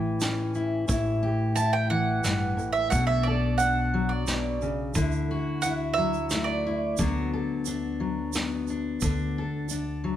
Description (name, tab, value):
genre	acoustic folk duo or small band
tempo	88 BPM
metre	3/4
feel	straight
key	D major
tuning	A4 = 440 Hz
part	fingerpicked steel-string acoustic guitar	accompaniment	0.0-10.2 s	G2 to A4	-27 LUFS	left 3 dB	none
part	upright bass	bass	0.0-10.2 s	A1 to D2	-32 LUFS	right 1 dB	none
part	vintage brush drum kit	drums	0.2-9.9 s	hi-hat, kick drum, snare drum	-31 LUFS	right 1 dB	none
part	tube shaker	percussion	0.2-9.9 s	none	-38 LUFS	right 11 dB	none
part	mandolin	second line	1.6-6.9 s	D5 to A5	-27 LUFS	right 4 dB	none
room	moderate large studio reverb, RT60 1.1 s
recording	none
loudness	-24 LUFS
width	side -11 dB against mid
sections	0.0-7.0 A section; 7.0-10.2 B section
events	mandolin solo 0.0-7.0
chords	0.0 A7; 2.9 Bm7; 5.0 Dadd9; 7.0 D6